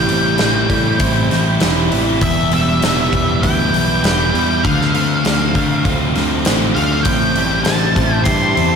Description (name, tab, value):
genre	rock, shoegaze and dream pop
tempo	99 BPM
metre	4/4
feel	straight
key	A minor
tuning	A4 = 440 Hz
part	octave-fuzz lead guitar	melody	0.0-8.8 s	E5 to C6	-20 LUFS	equal	distortion, tape echo
part	picked twelve-string acoustic guitar	arpeggios	0.0-8.8 s	F3 to E4	-26 LUFS	right 7 dB	lush chorus, tape echo
part	biting overdriven guitar	riff	0.0-8.8 s	E2 to F4	-22 LUFS	right 9 dB	reverse reverb
part	thick fuzz guitar	riff	0.0-8.8 s	E2 to F4	-19 LUFS	left 6 dB	distortion, wide subtle chorus
part	picked electric bass	bass	0.0-8.8 s	E1 to D3	-20 LUFS	equal	none
part	big rock drum kit	drums	0.1-8.7 s	hi-hat, kick drum, snare drum	-19 LUFS	equal	none
part	lush unison pad	sustained chords	7.2-8.8 s	G4 to A5	-24 LUFS	equal	chorus, phaser
room	wet lush hall reverb, RT60 1.8 s, studio reverb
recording	dreamy mix soaked in reverb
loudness	-13 LUFS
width	side -6 dB against mid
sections	0.0-8.8 A section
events	none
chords	0.0 Am7; 2.2 Em; 4.6 Dm7; 7.1 Am7